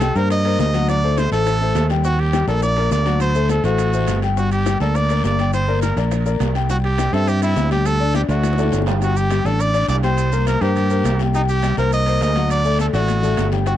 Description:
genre	latin, salsa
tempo	207 BPM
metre	4/4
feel	straight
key	unclear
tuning	A4 = 435 Hz
part	brilliant trumpet	melody	0.0-13.7 s	Eb4 to Eb5	-22 LUFS	right 2 dB	cassette tape
part	clear concert grand piano	accompaniment	0.0-13.8 s	F#3 to G5	-23 LUFS	left 9 dB	none
part	fingered electric bass	bass	0.0-13.8 s	G1 to G2	-18 LUFS	right 2 dB	none
part	bongos	percussion	0.0-9.0, 13.7-13.8 s	none	-30 LUFS	left 14 dB	none
part	congas	percussion	0.0-13.8 s	none	-32 LUFS	left 10 dB	none
part	guiro	percussion	0.0-13.8 s	none	-37 LUFS	left 15 dB	none
part	maracas	percussion	0.0-13.8 s	none	-39 LUFS	right 20 dB	none
part	timbales	percussion	0.0-13.8 s	none	-31 LUFS	right 13 dB	none
room	little or no reverb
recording	home recording on cassette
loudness	-16 LUFS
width	side -12 dB against mid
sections	0.0-9.0 A section; 9.0-13.8 A section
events	drum fill 8.4-9.0, 13.1-13.7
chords	0.0 Cm7; 0.9 D7; 2.0 Ebmaj7; 3.2 D7; 4.4 Gm; 5.5 Bb69; 6.7 C; 7.9 Dsus4; 8.4 D; 9.0 Gsus2; 10.2 C5; 11.3 Cm7; 12.5 D

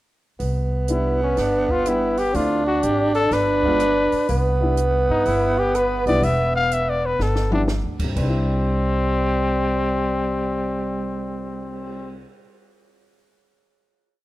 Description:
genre	jazz, small-group swing and bop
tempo	124 BPM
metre	4/4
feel	swing 66% on 8ths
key	C major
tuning	A4 = 443 Hz
part	growling tenor saxophone	second line	0.4-12.2 s	G3 to D4	-23 LUFS	right 2 dB	none
part	upright bass	bass	0.4-12.2 s	E1 to G2	-25 LUFS	equal	none
part	compact cocktail drum kit	drums	0.4-11.9 s	crash cymbal, cymbal swell, hi-hat, kick drum, rim click, snare drum, toms	-31 LUFS	equal	none
part	warm trumpet	melody	0.9-12.2 s	C4 to F5	-23 LUFS	left 3 dB	none
part	warm baby grand piano	accompaniment	0.9-12.4 s	C3 to B4	-27 LUFS	left 2 dB	none
room	light reverb, small room ambience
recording	rough home demo mix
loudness	-18 LUFS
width	side -16 dB against mid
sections	0.4-8.2 A section; 8.2-12.0 final chord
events	drum fill 7.2-7.7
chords	0.4 Cmaj9; 2.3 Dm9; 3.3 G7b9; 4.3 Cmaj9

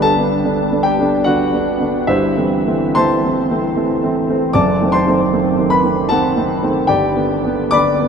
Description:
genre	classical, romantic character piece for solo piano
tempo	66-78 BPM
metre	3/4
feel	rubato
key	G major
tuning	A4 = 439 Hz
part	warm concert grand piano	solo	0.0-8.1 s	F#1 to D6	-13 LUFS	equal	none
room	wet huge ambient reverb, RT60 7.6 s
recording	in a vast, echoing space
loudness	-13 LUFS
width	side -6 dB against mid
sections	0.0-8.1 A section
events	none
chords	0.0 G; 2.1 Am7/G; 4.6 F#dim7; 6.9 G

